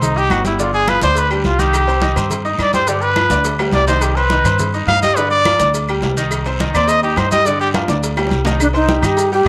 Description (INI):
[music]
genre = latin, salsa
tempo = 210 BPM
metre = 4/4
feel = straight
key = C harmonic minor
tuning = A4 = 439 Hz
[part]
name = bright trumpet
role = melody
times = 0.0-7.7 s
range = D4 to F5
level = -18 LUFS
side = equal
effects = none
[part]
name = bright grand piano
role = accompaniment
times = 0.0-9.5 s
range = D3 to Eb6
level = -23 LUFS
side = equal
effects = none
[part]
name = upright bass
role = bass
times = 0.0-9.5 s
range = G1 to G2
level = -22 LUFS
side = equal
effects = none
[part]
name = agogo bells and timbales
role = percussion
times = 0.0-9.3 s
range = none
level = -30 LUFS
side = equal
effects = none
[part]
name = congas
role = percussion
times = 0.0-9.5 s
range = none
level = -27 LUFS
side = equal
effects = none
[part]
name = cowbell and bongos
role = percussion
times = 0.0-9.5 s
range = none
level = -32 LUFS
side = equal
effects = none
[part]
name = guiro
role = percussion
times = 0.0-9.5 s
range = none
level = -35 LUFS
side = equal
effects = none
[part]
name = maracas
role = percussion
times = 0.0-9.5 s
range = none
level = -33 LUFS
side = equal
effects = none
[part]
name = claves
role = percussion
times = 0.3-9.2 s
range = none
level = -32 LUFS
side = equal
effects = none
[part]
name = alto flute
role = melody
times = 8.6-9.5 s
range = D4 to G4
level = -17 LUFS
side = equal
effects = none
[sound]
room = wet spring reverb, RT60 1.2 s, small room ambience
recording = none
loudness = -16 LUFS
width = mono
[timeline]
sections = 0.0-8.6 A section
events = trumpet solo 0.0-8.6; drum fill 3.3-4.0, 7.7-8.6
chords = 0.0 Cm; 0.6 G5; 1.7 Cm; 2.9 G7; 4.0 Cm; 5.2 G5; 6.3 Cm; 7.5 G5; 8.6 Cm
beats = 0.02 0.30 | 0.59 0.88 1.16 1.45 | 1.74 2.02 2.31 2.59 | 2.88 3.17 3.45 3.74 | 4.03 4.31 4.60 4.88 | 5.17 5.46 5.74 6.03 | 6.32 6.60 6.89 7.17 | 7.46 7.75 8.03 8.32 | 8.60 8.89 9.18 9.46